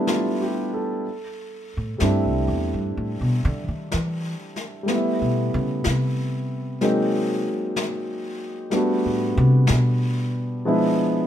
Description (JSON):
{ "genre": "jazz ballad", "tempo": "62 BPM", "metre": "4/4", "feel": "swing 68% on 8ths", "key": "unclear", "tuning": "A4 = 440 Hz", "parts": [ { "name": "warm concert grand piano", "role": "accompaniment", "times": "0.0-11.3 s", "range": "F3 to A4", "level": "-23 LUFS", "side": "equal", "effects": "none" }, { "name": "brushed snare drum and snare drum", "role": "drums", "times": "0.1-11.3 s", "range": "none", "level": "-32 LUFS", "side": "left 3 dB", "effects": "none" }, { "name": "upright bass", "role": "bass", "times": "1.8-11.3 s", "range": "C2 to E3", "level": "-22 LUFS", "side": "equal", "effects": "none" } ], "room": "light reverb", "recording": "minimal, uncompressed stereo recording", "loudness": "-20 LUFS", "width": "side -10 dB against mid", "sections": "0.0-11.3 A section", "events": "upright bass solo 0.0-11.3", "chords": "0.0 G69; 1.0 C6; 4.9 Am7; 6.8 Ab9; 8.7 Gmaj9; 10.6 E7b9", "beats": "0.07 | 1.04 2.00 2.96 3.92 | 4.88 5.84 6.80 7.76 | 8.72 9.68 10.63" }